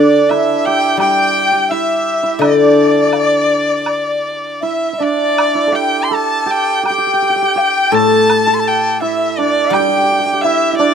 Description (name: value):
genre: chinese traditional, Chinese chamber ensemble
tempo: 77-87 BPM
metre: 4/4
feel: rubato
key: unclear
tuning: A4 = 440 Hz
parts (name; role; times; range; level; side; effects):
- clear erhu; melody; 0.0-10.9 s; D5 to C6; -17 LUFS; equal; none
- dizi; second line; 0.0-10.9 s; D5 to C6; -17 LUFS; left 4 dB; none
- hammered dulcimer; second line; 0.0-10.9 s; D4 to A4; -17 LUFS; right 8 dB; none
- guzheng; accompaniment; 0.0-10.9 s; A2 to G3; -16 LUFS; left 4 dB; none
- woodblock; percussion; 0.3-10.6 s; none; -20 LUFS; equal; none
room: light reverb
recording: none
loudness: -12 LUFS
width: side -7 dB against mid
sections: 0.0-5.4 A section; 5.4-10.9 B section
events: none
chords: none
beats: 0.30 0.99 1.70 | 2.41 3.12 3.85 4.62 | 5.37 6.11 6.84 7.57 | 8.29 9.02 9.73 10.43